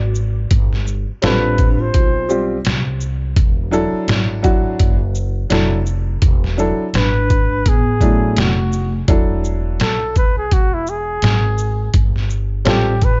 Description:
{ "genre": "hip hop, jazz-hop", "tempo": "84 BPM", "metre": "4/4", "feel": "swing 57% on 16ths", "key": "E mixolydian", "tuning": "A4 = 441 Hz", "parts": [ { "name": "breathy flugelhorn", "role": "melody", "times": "0.0-2.5, 7.0-13.2 s", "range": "E4 to D5", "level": "-24 LUFS", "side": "equal", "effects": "slapback echo" }, { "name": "vibraphone with soft mallets", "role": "second line", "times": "0.0-2.5, 6.9-8.9 s", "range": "A3 to F#4", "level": "-28 LUFS", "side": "equal", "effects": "none" }, { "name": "upright bass", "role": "bass", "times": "0.0-13.2 s", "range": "E1 to C2", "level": "-22 LUFS", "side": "equal", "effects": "none" }, { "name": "trip hop sampler-style drum kit", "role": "drums", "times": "0.1-13.2 s", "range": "hi-hat, kick drum, shaker, snare drum", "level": "-18 LUFS", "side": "equal", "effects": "none" }, { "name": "warm upright piano", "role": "accompaniment", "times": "1.2-12.9 s", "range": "F#3 to A4", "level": "-22 LUFS", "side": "equal", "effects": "none" } ], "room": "small room ambience", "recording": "dark, warm production, nothing above 7.7 kHz", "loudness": "-17 LUFS", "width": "mono", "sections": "0.0-9.1 A section; 9.1-13.2 B section", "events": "flugelhorn solo 9.1-13.2", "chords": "0.0 E7sus2 (rootless); 0.5 G9sus4; 3.4 E9sus4; 11.9 G9sus4" }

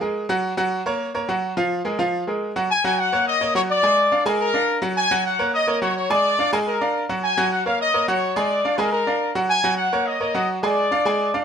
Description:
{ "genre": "latin", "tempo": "212 BPM", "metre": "4/4", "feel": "straight", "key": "Eb minor", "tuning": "A4 = 442 Hz", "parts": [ { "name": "bright grand piano", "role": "accompaniment", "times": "0.0-11.4 s", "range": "F3 to Ab5", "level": "-22 LUFS", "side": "right 1 dB", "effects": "none" }, { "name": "clear trumpet section", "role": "melody", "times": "2.7-11.4 s", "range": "Bb4 to Ab5", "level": "-20 LUFS", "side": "left 2 dB", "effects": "none" } ], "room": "moderate studio reverb, RT60 0.8 s", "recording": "none", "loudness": "-18 LUFS", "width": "side -7 dB against mid", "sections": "0.0-2.7 A section; 2.7-11.4 A section", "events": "none", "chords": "0.4 Gb; 1.6 Bb5; 2.7 Ebm7; 3.8 Bb7; 5.0 Ebm7; 6.1 Bb7; 7.2 Ebm7; 8.4 Bb7; 9.5 Ebm7; 10.6 Ddim" }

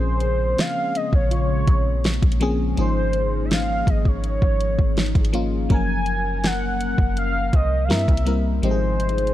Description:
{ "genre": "contemporary R&B", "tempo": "82 BPM", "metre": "4/4", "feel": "straight", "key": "Bb minor", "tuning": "A4 = 440 Hz", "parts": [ { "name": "warm velvety synth lead", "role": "melody", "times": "0.0-9.3 s", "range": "C5 to Ab5", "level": "-25 LUFS", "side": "equal", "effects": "chorus, tape echo" }, { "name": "FM electric piano with soft pad layer", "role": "accompaniment", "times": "0.0-9.3 s", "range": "F3 to Bb4", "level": "-27 LUFS", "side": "left 3 dB", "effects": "chorus" }, { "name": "glassy FM pad", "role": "sustained chords", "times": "0.2-9.3 s", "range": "Db3 to Bb4", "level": "-32 LUFS", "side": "left 2 dB", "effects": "ensemble chorus, built-in reverb" }, { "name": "soft 808-style bass", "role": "bass", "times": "0.0-9.3 s", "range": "Gb1 to G2", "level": "-23 LUFS", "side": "equal", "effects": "none" }, { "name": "handpan", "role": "texture", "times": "0.0-9.3 s", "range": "Eb4 to Eb5", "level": "-39 LUFS", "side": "right 1 dB", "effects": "none" }, { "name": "smooth R&B drum kit", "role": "drums", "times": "0.2-9.3 s", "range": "hi-hat, kick drum, snare drum", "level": "-20 LUFS", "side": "equal", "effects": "none" } ], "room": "little or no reverb", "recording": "dark, warm production", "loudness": "-18 LUFS", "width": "side -13 dB against mid", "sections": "0.0-9.3 A section", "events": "none", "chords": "0.0 Bbm9; 2.8 Db69/Ab; 5.7 Gbmaj7; 7.9 C7; 8.6 Fm7/Ab" }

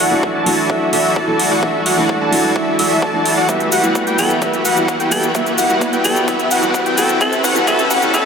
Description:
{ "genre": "EDM, festival progressive house", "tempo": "129 BPM", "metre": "4/4", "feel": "straight", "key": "D major", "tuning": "A4 = 435 Hz", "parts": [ { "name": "warm studio string section", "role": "sustained chords", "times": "0.0-8.3 s", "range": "E3 to A4", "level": "-25 LUFS", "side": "left 1 dB", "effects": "sidechain pumping, low-pass filter" }, { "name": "wide unison lead", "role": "arpeggios", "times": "0.0-8.3 s", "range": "E5 to A5", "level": "-20 LUFS", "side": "left 1 dB", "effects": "vintage 12-bit sampler grit, sidechain pumping, dub echo" }, { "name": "dense compressed supersaw", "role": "riff", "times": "0.0-8.3 s", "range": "E4 to A5", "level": "-18 LUFS", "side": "right 1 dB", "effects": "sidechain pumping, low-pass filter, dub echo" }, { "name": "electronic hi-hat and cabasa", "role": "drums", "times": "0.0-8.2 s", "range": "none", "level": "-22 LUFS", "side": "right 1 dB", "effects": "high-pass filter on hats, studio reverb, high-pass filter on perc" }, { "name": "riser", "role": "sound effects", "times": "0.3-8.3 s", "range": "none", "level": "-25 LUFS", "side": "right 1 dB", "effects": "none" }, { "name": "warm concert grand piano", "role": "accompaniment", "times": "0.1-8.2 s", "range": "E3 to A4", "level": "-21 LUFS", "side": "equal", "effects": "sidechain pumping, dub echo" }, { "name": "electronic kick drum", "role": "drums", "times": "0.2-8.2 s", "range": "none", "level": "-24 LUFS", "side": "equal", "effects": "high-pass filter on kick, studio reverb" }, { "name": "growling alto saxophone", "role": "melody", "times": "4.2-8.3 s", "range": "A4", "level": "-22 LUFS", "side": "equal", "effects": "dub echo" } ], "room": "wet lush hall reverb, RT60 2.0 s", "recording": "dense, heavily limited modern master, high-pass filter", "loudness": "-13 LUFS", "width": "side -6 dB against mid", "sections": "0.0-8.3 A section", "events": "build-up 0.0-8.3; filter sweep on analog synth lead 0.0-8.3; riser 0.3-8.3; drum fill 3.5-8.3", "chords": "0.0 Dadd9; 3.5 Emadd9; 7.2 A" }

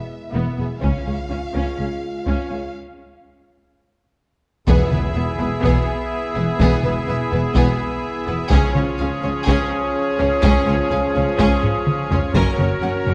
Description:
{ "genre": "cinematic, epic orchestral film score", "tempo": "125 BPM", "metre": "4/4", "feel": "straight", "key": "unclear", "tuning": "A4 = 440 Hz", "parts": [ { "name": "rich chamber violin section", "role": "melody", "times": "0.0-13.1 s", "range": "G#4 to F#5", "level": "-32 LUFS", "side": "equal", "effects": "none" }, { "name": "dark French horn section", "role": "sustained chords", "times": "0.0-13.1 s", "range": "E3 to E#4", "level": "-29 LUFS", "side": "equal", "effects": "none" }, { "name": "rich symphonic violin section", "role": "second line", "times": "0.3-13.1 s", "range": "B3 to A#4", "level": "-32 LUFS", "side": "equal", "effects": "none" }, { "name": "warm symphonic viola section", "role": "accompaniment", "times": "0.3-13.1 s", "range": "B3 to C#4", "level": "-31 LUFS", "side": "equal", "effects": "none" }, { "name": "clear symphonic double bass section", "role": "bass", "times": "0.3-13.1 s", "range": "E1 to C#2", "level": "-26 LUFS", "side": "equal", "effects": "none" }, { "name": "warm symphonic cello section", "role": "bass", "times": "0.3-13.1 s", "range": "C#2 to F#2", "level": "-27 LUFS", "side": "equal", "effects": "none" }, { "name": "taiko ensemble", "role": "drums", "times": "0.8-1.8, 4.7-12.8 s", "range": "none", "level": "-24 LUFS", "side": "equal", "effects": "none" }, { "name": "pipe organ, strings celeste", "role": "sustained chords", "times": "4.7-13.1 s", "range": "B3 to E5", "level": "-29 LUFS", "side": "equal", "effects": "none" }, { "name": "warm trumpet section", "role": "stabs", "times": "4.7-13.1 s", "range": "G#4 to A#4", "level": "-30 LUFS", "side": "equal", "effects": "none" }, { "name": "timpani", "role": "percussion", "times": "4.7-5.4 s", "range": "E2", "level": "-29 LUFS", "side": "equal", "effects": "none" } ], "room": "moderate scoring stage reverb, RT60 2.0 s", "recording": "dark, warm production", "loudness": "-20 LUFS", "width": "mono", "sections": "0.0-4.7 A section; 4.7-13.1 B section", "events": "break 2.8-4.7; drum fill 4.0-4.7, 11.6-12.4", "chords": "0.0 E; 0.8 C#; 4.7 E; 8.5 C#; 12.4 F#" }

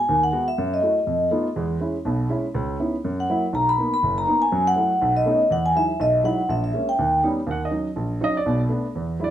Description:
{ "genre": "jazz", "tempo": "243 BPM", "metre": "4/4", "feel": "swing 58% on 8ths", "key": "unclear", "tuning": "A4 = 440 Hz", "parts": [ { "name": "vibraphone with soft mallets", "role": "melody", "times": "0.0-7.2 s", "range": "D#5 to B5", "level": "-20 LUFS", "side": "left 1 dB", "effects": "none" }, { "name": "warm grand piano", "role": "accompaniment", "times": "0.1-9.3 s", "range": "F#1 to Gb5", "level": "-23 LUFS", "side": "right 1 dB", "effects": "none" } ], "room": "moderate club reverb, RT60 0.8 s", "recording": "none", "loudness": "-20 LUFS", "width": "side -11 dB against mid", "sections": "0.0-7.5 A section; 7.5-9.3 B section", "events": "none", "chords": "0.0 G#m7; 0.6 F#m7; 1.1 F7#11; 1.6 E6; 2.5 C#m9; 3.0 F#7; 3.5 Bmaj7; 4.5 F#m7; 5.0 B9; 5.5 Emaj9; 6.5 A#m7b5; 7.0 D#aug7; 7.5 Ebm7; 8.5 Bm7" }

